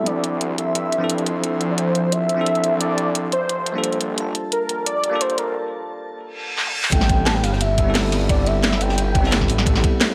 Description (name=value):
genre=liquid drum and bass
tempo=175 BPM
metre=4/4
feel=straight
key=A minor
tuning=A4 = 439 Hz
part: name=warm velvety synth lead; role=melody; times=0.0-9.5 s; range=Bb4 to A5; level=-26 LUFS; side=equal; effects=chorus, cassette tape, digital delay
part: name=bell-like tine electric piano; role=accompaniment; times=0.0-10.1 s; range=F3 to A5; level=-27 LUFS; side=equal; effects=tape echo
part: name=glassy FM pad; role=sustained chords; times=0.0-10.1 s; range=F3 to C6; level=-33 LUFS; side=equal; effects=ensemble chorus, built-in reverb, sidechain pumping
part: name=swelling detuned saw bass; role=bass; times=0.0-9.8 s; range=F1 to G2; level=-27 LUFS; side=equal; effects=tube saturation, high-pass filter
part: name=garage drum kit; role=drums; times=0.1-10.1 s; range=hi-hat, snare drum, toms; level=-24 LUFS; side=equal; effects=high-pass filter on hats, high-pass filter on snare, high-pass filter on toms, high-pass filter on room
part: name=reverse cymbal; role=sound effects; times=6.3-6.9 s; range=none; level=-30 LUFS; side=equal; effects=none
part: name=crunchy breakbeat drum kit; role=drums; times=6.9-10.1 s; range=hi-hat, ride cymbal, snare drum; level=-30 LUFS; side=equal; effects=high-pass filter on cymbals, high-pass filter on hats, high-pass filter on snare, high-pass filter on room
part: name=electronic kick drum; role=drums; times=6.9-9.9 s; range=none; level=-23 LUFS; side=equal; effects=none
room=moderate lush hall reverb, RT60 2.1 s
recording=high-pass filter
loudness=-20 LUFS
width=mono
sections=0.0-6.9 A section; 6.9-10.1 B section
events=build-up 0.0-6.9; filter sweep on tine electric piano 0.0-6.9; filter sweep 0.0-6.9; break 5.6-6.9; reverse cymbal 6.3-6.9; drum fill 6.6-6.9; drop 6.9-10.1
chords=0.1 Dm9; 3.3 Gm9; 6.9 Am9